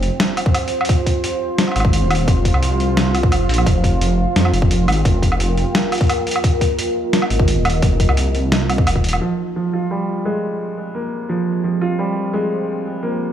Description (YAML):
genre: half-time drum and bass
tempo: 173 BPM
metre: 4/4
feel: half-time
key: F minor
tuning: A4 = 445 Hz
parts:
  - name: deep dark ambient pad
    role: sustained chords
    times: 0.0-13.3 s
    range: F4 to C6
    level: -23 LUFS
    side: equal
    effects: chorus, built-in reverb, sidechain pumping
  - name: dark detuned saw bass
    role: bass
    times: 0.0-9.2 s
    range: Eb1 to F2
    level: -17 LUFS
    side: equal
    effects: none
  - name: boom bap sampler-style drum kit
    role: drums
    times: 0.0-9.2 s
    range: hi-hat, snare drum, woodblock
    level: -21 LUFS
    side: equal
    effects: low-pass filter on snare, low-pass filter on hats, low-pass filter on toms, low-pass filter on cymbals, low-pass filter on perc, low-pass filter on room
  - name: electronic kick drum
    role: drums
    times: 0.5-9.0 s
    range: none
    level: -16 LUFS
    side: equal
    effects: none
  - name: felt-muted upright piano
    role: arpeggios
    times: 9.2-13.3 s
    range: F3 to F4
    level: -20 LUFS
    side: right 2 dB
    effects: low-pass filter, digital delay
room: little or no reverb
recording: played on a big sound system in a bare room, large studio reverb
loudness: -15 LUFS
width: side -10 dB against mid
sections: 0.0-9.2 A section; 9.2-13.3 B section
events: none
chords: 0.0 Fm